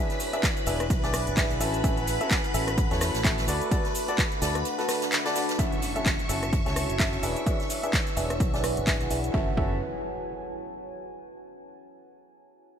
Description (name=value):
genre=piano house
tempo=128 BPM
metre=4/4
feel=swing 57% on 16ths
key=F# minor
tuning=A4 = 439 Hz
part: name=string machine, violins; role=sustained chords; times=0.0-9.3 s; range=B4 to C#6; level=-34 LUFS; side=equal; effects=ensemble chorus, sidechain pumping
part: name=clear grand piano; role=riff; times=0.0-9.8 s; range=C#4 to E5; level=-31 LUFS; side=equal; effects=sidechain pumping, low-pass filter, ping-pong delay
part: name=deep dark ambient pad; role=texture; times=0.0-11.2 s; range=D4 to C#6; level=-34 LUFS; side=equal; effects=chorus, built-in reverb, sidechain pumping
part: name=house drum kit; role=drums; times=0.1-9.3 s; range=handclaps, hi-hat, rim click, shaker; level=-31 LUFS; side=left 1 dB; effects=overdrive
part: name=soft-mallet drum kit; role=drums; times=0.1-9.2 s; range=hi-hat, snare drum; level=-38 LUFS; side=right 2 dB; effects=none
part: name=electronic kick drum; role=drums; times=0.4-9.7 s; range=none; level=-27 LUFS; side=equal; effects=overdrive
part: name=fingered electric bass with an envelope filter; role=bass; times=0.7-9.8 s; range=E1 to E2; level=-31 LUFS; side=equal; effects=sidechain pumping
part: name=impact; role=sound effects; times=5.6-11.2 s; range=none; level=-39 LUFS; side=equal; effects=none
room=moderate lush hall reverb, RT60 2.3 s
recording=bright 1980s-style digital production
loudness=-24 LUFS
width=side -8 dB against mid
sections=0.0-5.6 A section; 5.6-9.3 B section; 9.3-11.2 C section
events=drop 0.0-5.6; kick drops out 4.7-5.6; impact 5.6-7.5; filter sweep on grand piano 5.6-9.3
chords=0.0 E7; 1.6 A6; 3.5 D; 5.6 F#m7; 7.2 E7; 9.3 F#m7